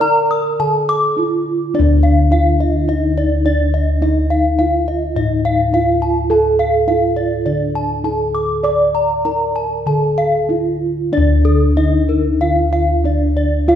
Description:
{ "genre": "Balinese gamelan", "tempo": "94-105 BPM", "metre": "4/4", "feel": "straight", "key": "D pelog", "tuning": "A4 = 440 Hz", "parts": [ { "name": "gamelan-type bronze metallophone", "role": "melody", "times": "0.0-13.8 s", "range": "D4 to D5", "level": "-19 LUFS", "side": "right 1 dB", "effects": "none" }, { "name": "gamelan-type bronze metallophone", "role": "arpeggios", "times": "0.0-13.8 s", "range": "A4-30c to Eb6+20c", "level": "-19 LUFS", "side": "left 1 dB", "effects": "none" }, { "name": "gamelan-type bossed gongs", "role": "bass", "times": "0.0-13.8 s", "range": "D2 to D5", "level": "-16 LUFS", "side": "left 1 dB", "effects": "none" } ], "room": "wet recital hall reverb, RT60 1.7 s", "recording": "recorded in a church or concert hall", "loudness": "-13 LUFS", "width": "side -9 dB against mid", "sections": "0.0-1.7 A section; 1.7-11.1 B section; 11.1-13.8 A section", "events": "break 0.9-1.7", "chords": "none" }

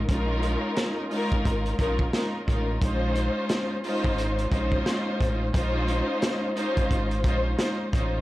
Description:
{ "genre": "hip hop, boom-bap hip-hop", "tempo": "88 BPM", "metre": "4/4", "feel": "swing 59% on 16ths", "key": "Bb minor", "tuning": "A4 = 444 Hz", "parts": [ { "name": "warm studio string section", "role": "accompaniment", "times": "0.0-8.2 s", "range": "Ab3 to C5", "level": "-27 LUFS", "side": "left 1 dB", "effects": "high-pass filter, low-pass filter" }, { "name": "deep dub fingered electric bass", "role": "bass", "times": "0.0-8.2 s", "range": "Ab1 to Bb1", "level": "-28 LUFS", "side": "equal", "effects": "transformer saturation" }, { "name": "crunchy breakbeat drum kit", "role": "drums", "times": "0.1-8.1 s", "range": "hi-hat, kick drum, snare drum", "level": "-28 LUFS", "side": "equal", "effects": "none" } ], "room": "little or no reverb", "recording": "dry, gritty hardware recording", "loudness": "-23 LUFS", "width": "side -16 dB against mid", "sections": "0.0-8.2 A section", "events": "none", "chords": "0.0 Eb9sus4; 2.8 Bbm11" }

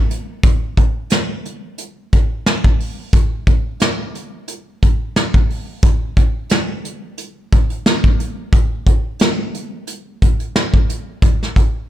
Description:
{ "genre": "hip hop", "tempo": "89 BPM", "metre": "4/4", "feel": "swing 57% on 16ths", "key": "none", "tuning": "none", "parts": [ { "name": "soft brush drum kit", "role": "drums", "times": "0.1-11.7 s", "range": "hi-hat, kick drum, rim click, snare drum", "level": "-14 LUFS", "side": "equal", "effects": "none" } ], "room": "light reverb", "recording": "none", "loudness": "-14 LUFS", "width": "side -13 dB against mid", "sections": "0.0-11.9 A section", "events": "none", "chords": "none" }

